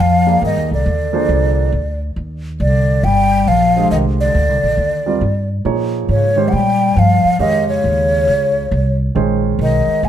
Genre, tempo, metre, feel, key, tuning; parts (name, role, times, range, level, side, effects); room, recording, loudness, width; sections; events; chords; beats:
modal jazz; 137 BPM; 4/4; swing 66% on 8ths; A4 = 443 Hz
breathy mellow concert flute; melody; 0.0-10.1 s; Db5 to Ab5; -16 LUFS; equal; plate reverb
mellow bass clarinet; second line; 0.0-10.1 s; Db3 to Ab3; -20 LUFS; left 6 dB
upright bass; bass; 0.0-10.1 s; G1 to Bb2; -17 LUFS; equal
warm grand piano; accompaniment; 0.3-10.1 s; D3 to F5; -20 LUFS; right 6 dB
moderate studio reverb, RT60 0.9 s; -13 LUFS; side -10 dB against mid
0.0-10.1 A section
0.0 Cm9; 5.7 Bbm9
| 0.41 0.84 1.28 1.72 | 2.16 2.60 3.03 3.47 | 3.91 4.35 4.78 5.22 | 5.66 6.10 6.53 6.97 | 7.41 7.84 8.28 8.72 | 9.16 9.59 10.03